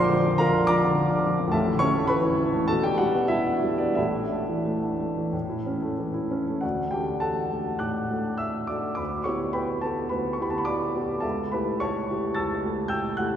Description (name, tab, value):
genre	classical, romantic character piece for solo piano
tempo	85-113 BPM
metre	4/4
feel	rubato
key	D major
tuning	A4 = 442 Hz
part	warm baby grand piano	solo	0.0-13.4 s	A1 to A6	-23 LUFS	equal	none
room	wet cathedral reverb, RT60 4.5 s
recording	heard from further back in the room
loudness	-23 LUFS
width	side -9 dB against mid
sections	0.0-6.6 A section; 6.6-13.4 B section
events	none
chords	0.0 Bb; 1.5 A; 2.7 G/B; 4.0 Asus4; 5.3 A; 6.6 D; 9.0 Em7/D; 11.2 A7/C#